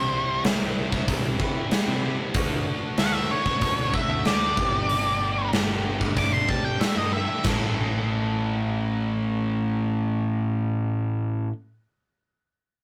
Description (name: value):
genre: classic rock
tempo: 94 BPM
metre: 4/4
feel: straight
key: unclear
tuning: A4 = 440 Hz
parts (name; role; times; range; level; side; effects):
- octave-fuzz lead guitar; melody; 0.0-7.4 s; C5 to D6; -28 LUFS; equal; distortion
- overdriven electric guitar; riff; 0.0-11.5 s; A2 to A4; -30 LUFS; equal; none
- fuzz picked electric bass; bass; 0.0-11.5 s; G1 to C3; -31 LUFS; equal; overdrive
- big rock drum kit; drums; 0.4-7.6 s; crash cymbal, hi-hat, kick drum, snare drum; -28 LUFS; equal; none
room: light reverb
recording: rough rehearsal-room recording, tube saturation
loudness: -25 LUFS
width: mono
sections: 0.0-7.4 A section; 7.4-10.0 B section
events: lead electric guitar solo 0.0-7.4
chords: 0.0 C; 2.3 D; 4.6 Gsus2; 7.4 A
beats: 0.45 1.08 1.71 | 2.35 2.98 3.62 4.25 | 4.89 5.53 6.17 6.80 | 7.45 8.09 8.73 9.37